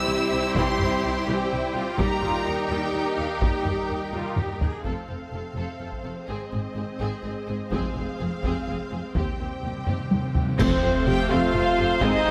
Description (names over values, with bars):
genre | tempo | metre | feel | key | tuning
cinematic, epic orchestral film score | 84 BPM (dotted quarters) | 6/8 | straight | unclear | A4 = 439 Hz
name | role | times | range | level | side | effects
warm symphonic violin section | melody | 0.0-12.3 s | C5 to E6 | -37 LUFS | equal | none
warm symphonic violin section | second line | 0.0-12.3 s | G4 to G5 | -36 LUFS | equal | none
warm symphonic viola section | accompaniment | 0.0-12.3 s | C3 to E4 | -35 LUFS | equal | none
clear French horn section | sustained chords | 0.0-12.3 s | G3 to G4 | -33 LUFS | equal | none
mellow trombone section | sustained chords | 0.0-4.6, 10.6-12.3 s | C3 to A3 | -35 LUFS | equal | none
rich symphonic string section | sustained chords | 0.0-12.3 s | C4 to Ab5 | -36 LUFS | equal | none
warm symphonic cello section | bass | 0.0-12.3 s | Eb2 to Ab4 | -35 LUFS | equal | none
rich symphonic double bass section | bass | 0.1-12.3 s | F1 to Eb2 | -36 LUFS | equal | none
taiko ensemble | drums | 0.6-12.3 s | none | -30 LUFS | equal | none
cymbal swell, clash cymbals and concert bass drum | percussion | 7.7-11.5 s | none | -33 LUFS | equal | none
timpani | percussion | 9.2-10.6 s | C3 | -34 LUFS | equal | none
mellow silver concert flute | second line | 10.6-12.3 s | C5 to G5 | -34 LUFS | equal | none
clear trumpet | stabs | 10.6-12.3 s | C5 | -31 LUFS | equal | none
room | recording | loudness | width
moderate scoring stage reverb, RT60 1.9 s | none | -25 LUFS | mono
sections
0.0-4.9 A section; 4.9-10.6 B section; 10.6-12.3 C section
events
drum fill 4.1-4.9, 9.9-10.6; timpani fill 9.2-10.6; band accent 10.6-11.1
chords
0.0 C; 2.0 Eb; 4.9 F; 6.3 Ab; 7.7 Fm; 9.2 Cm/Eb; 10.6 F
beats
| 0.55 1.27 | 1.99 2.70 | 3.42 4.14 | 4.86 5.57 | 6.29 7.01 | 7.72 8.44 | 9.16 9.88 | 10.59 11.31 | 12.02